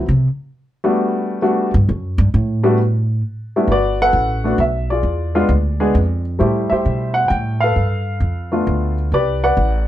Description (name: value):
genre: jazz piano trio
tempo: 133 BPM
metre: 3/4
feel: swing 68% on 8ths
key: G major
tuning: A4 = 440 Hz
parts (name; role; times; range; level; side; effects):
- warm baby grand piano; melody; 0.0-9.9 s; G3 to G5; -17 LUFS; left 1 dB; none
- upright bass; bass; 0.0-9.9 s; G1 to C3; -18 LUFS; equal; none
room: light reverb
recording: dark, warm production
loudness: -15 LUFS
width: side -12 dB against mid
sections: 0.0-3.7 A section; 3.7-9.9 B section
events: upright bass solo 0.0-3.7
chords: 0.0 N.C.; 1.0 Gmaj9; 5.0 E7b9; 6.4 Am9; 7.8 G9; 9.1 Cmaj7sus2